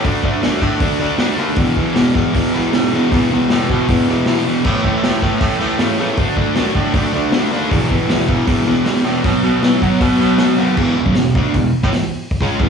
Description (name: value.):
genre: garage rock duo or trio.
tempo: 157 BPM.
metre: 4/4.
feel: straight.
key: unclear.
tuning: A4 = 442 Hz.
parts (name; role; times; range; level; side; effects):
fuzz guitar; riff; 0.0-12.7 s; E2 to D4; -15 LUFS; equal; distortion, slapback echo.
bright baritone saxophone; bass; 0.0-12.7 s; C#2 to F#3; -23 LUFS; right 1 dB; none.
vintage drum kit; drums; 0.0-12.7 s; crash cymbal, hi-hat, kick drum, snare drum; -19 LUFS; equal; none.
room: light reverb.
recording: live gig heard through the venue's PA, club reverb, small room ambience.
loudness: -13 LUFS.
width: side -6 dB against mid.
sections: 0.0-10.8 A section; 10.8-12.7 B section.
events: none.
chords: 0.1 D5; 1.6 E5; 4.6 A; 6.2 D5; 7.7 E5; 9.2 B5; 10.8 E5.